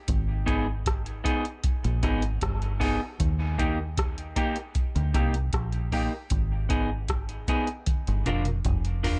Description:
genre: dub reggae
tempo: 77 BPM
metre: 4/4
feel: straight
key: Eb major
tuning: A4 = 442 Hz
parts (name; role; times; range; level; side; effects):
- deep dub fingered electric bass; bass; 0.1-9.2 s; F1 to Eb2; -30 LUFS; equal; none
- soft vintage rhythm box; drums; 0.1-9.2 s; hi-hat, kick drum, rim click, toms; -31 LUFS; equal; none
- clean electric guitar; accompaniment; 0.5-9.2 s; Bb3 to Bb4; -33 LUFS; equal; dub echo
room: little or no reverb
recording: lossy compression artefacts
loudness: -27 LUFS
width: mono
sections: 0.0-9.2 A section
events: drum fill 7.9-9.2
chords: 0.1 Abm; 3.2 Eb; 6.3 Abm; 7.9 Bb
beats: | 0.08 0.86 1.64 2.42 | 3.20 3.98 4.75 5.53 | 6.31 7.09 7.87 8.65

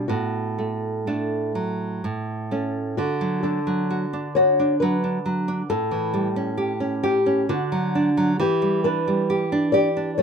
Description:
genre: romantic duo for nylon-string guitar and classical guitar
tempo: 61-68 BPM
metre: 3/4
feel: rubato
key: D major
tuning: A4 = 440 Hz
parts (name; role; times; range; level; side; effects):
- flamenco guitar; melody; 0.0-10.2 s; F#4 to D5; -24 LUFS; left 3 dB; none
- nylon-string guitar; accompaniment; 0.0-10.2 s; A2 to G4; -22 LUFS; right 2 dB; none
room: light reverb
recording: minimal, uncompressed stereo recording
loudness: -21 LUFS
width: side -6 dB against mid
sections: 0.0-3.0 A section; 3.0-10.2 B section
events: none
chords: 0.1 D/A; 2.0 A; 3.0 D; 5.7 A7; 7.5 D; 8.4 Em7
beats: | 0.09 1.07 2.04 | 2.98 3.90 4.82 | 5.70 6.59 7.50 | 8.40 9.29 10.19

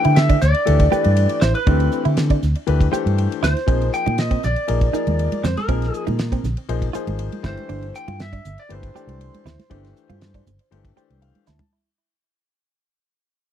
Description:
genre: electric jazz fusion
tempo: 119 BPM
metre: 4/4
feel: straight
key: unclear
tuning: A4 = 440 Hz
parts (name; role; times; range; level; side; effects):
- lightly driven lead guitar; melody; 0.0-11.2 s; Bb4 to G5; -23 LUFS; equal; none
- bright concert grand piano; accompaniment; 0.0-11.7 s; E3 to A5; -26 LUFS; left 13 dB; none
- damped 70s drum kit; drums; 0.0-11.7 s; hi-hat, kick drum, ride cymbal, snare drum, toms; -21 LUFS; equal; none
- direct-recorded clean electric guitar; stabs; 0.1-11.6 s; C4 to G4; -28 LUFS; right 15 dB; analog chorus, tape echo
- fretless electric bass; bass; 0.1-11.6 s; G1 to D3; -20 LUFS; equal; none
- congas; percussion; 4.1-11.7 s; none; -29 LUFS; right 3 dB; none
room: little or no reverb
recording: dry, close 1970s-style studio recording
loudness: -17 LUFS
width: side -10 dB against mid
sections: 0.0-11.7 A section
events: fade-out 0.0-11.7; grand piano fill 10.7-11.7; drum fill 11.5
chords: 0.0 D9sus4; 3.7 Bb9sus4; 7.4 G9sus4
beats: 0.16 0.66 1.16 | 1.67 2.17 2.67 3.17 | 3.67 4.18 4.68 5.18 | 5.68 6.19 6.69 7.19 | 7.70 8.20 8.70 9.20 | 9.71 10.21 10.71 11.22

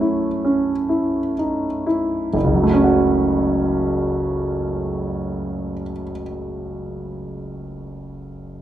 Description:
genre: classical, impressionist solo piano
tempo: 21 BPM (dotted quarters)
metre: 6/8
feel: rubato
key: F# dorian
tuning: A4 = 441 Hz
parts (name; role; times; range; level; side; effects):
- warm concert grand piano; solo; 0.0-8.6 s; F#1 to F#6; -19 LUFS; right 1 dB; none
room: moderate recital hall reverb, RT60 1.4 s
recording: dark, warm production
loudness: -18 LUFS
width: side -12 dB against mid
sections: 0.0-2.3 A section; 2.3-7.9 B section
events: slowing down 0.0-2.3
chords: 0.0 F#m7; 2.3 F#m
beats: | 2.34 5.17

